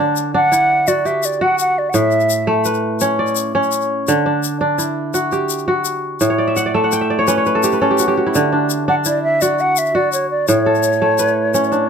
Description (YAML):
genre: west african traditional, West African string and xylophone music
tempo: 112 BPM (dotted quarters)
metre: 12/8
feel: straight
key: D major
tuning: A4 = 440 Hz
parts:
  - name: kora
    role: arpeggios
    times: 0.0-11.9 s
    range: A2 to G5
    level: -16 LUFS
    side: equal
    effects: none
  - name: egg shaker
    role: percussion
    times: 0.2-11.8 s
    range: none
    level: -24 LUFS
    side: left 11 dB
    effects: none
  - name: mellow hollow silver concert flute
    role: melody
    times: 0.4-2.7, 8.9-11.9 s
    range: C#5 to F#5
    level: -16 LUFS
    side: right 1 dB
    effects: none
room: little or no reverb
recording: close, detailed microphones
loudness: -14 LUFS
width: side -7 dB against mid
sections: 0.0-11.9 A section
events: kora fill 6.3-8.3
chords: 0.0 D; 1.9 A; 4.1 D; 6.2 A; 8.3 D; 10.5 A